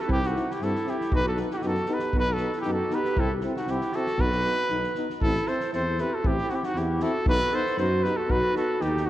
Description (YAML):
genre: balkan folk, Balkan brass band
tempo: 117 BPM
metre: 2/4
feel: swing 55% on 16ths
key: B phrygian dominant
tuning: A4 = 440 Hz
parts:
  - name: warm trumpet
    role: melody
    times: 0.0-9.1 s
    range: F#4 to C5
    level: -28 LUFS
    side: equal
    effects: none
  - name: warm clarinet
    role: second line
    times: 0.0-9.1 s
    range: D#4 to A4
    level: -31 LUFS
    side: right 2 dB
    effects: none
  - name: clear French horn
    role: accompaniment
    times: 0.1-9.1 s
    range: D#4 to E4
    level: -34 LUFS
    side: left 4 dB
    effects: none
  - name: warm euphonium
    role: accompaniment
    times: 0.1-9.1 s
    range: B3 to C4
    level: -34 LUFS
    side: right 2 dB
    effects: none
  - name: mellow tuba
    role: bass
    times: 0.1-9.1 s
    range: A1 to G2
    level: -31 LUFS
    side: equal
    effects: none
  - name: unplugged drum kit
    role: percussion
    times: 0.1-9.0 s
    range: kick drum, snare drum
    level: -30 LUFS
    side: equal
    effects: none
room: wet concert hall reverb, RT60 2.5 s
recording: worn, warbling old tape, cassette tape, warbly pitch drift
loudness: -23 LUFS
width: side -14 dB against mid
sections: 0.0-5.2 A section; 5.2-9.1 B section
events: none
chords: 0.0 C; 1.1 B; 3.2 C; 4.2 B; 5.2 Am; 7.3 B